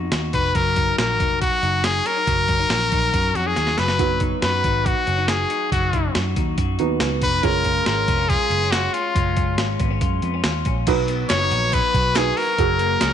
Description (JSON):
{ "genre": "jangly indie pop", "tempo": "140 BPM", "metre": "4/4", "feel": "straight", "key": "unclear", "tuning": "A4 = 440 Hz", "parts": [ { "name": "electric guitar through a small old amp", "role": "arpeggios", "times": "0.0-13.1 s", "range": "F#3 to F#4", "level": "-28 LUFS", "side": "left 9 dB", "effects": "slapback echo" }, { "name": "vintage muted picked electric bass", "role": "bass", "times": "0.0-13.1 s", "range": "E#1 to F#2", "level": "-24 LUFS", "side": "right 1 dB", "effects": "none" }, { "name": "boom bap sampler-style drum kit", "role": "drums", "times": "0.1-13.1 s", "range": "crash cymbal, hi-hat, kick drum, snare drum", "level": "-24 LUFS", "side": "right 1 dB", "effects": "none" }, { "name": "brilliant trumpet", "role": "melody", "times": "0.3-13.1 s", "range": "E#4 to C#5", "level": "-20 LUFS", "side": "left 2 dB", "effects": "none" }, { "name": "warm upright piano", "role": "accompaniment", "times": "4.0-13.1 s", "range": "B3 to B4", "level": "-27 LUFS", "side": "right 12 dB", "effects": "none" }, { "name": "group handclap", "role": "percussion", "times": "11.3-13.1 s", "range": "none", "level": "-34 LUFS", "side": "right 14 dB", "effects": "none" } ], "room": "moderate echo chamber reverb, RT60 1.2 s, small room ambience", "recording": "1960s-style stereo with parts hard left and right, nothing above 10.5 kHz", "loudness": "-18 LUFS", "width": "side -9 dB against mid", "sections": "0.0-10.9 A section; 10.9-13.1 B section", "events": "drum fill 3.6-4.0", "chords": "0.0 B; 0.6 D#m; 3.8 B/F#; 7.4 C#; 10.9 B; 12.6 F#add9" }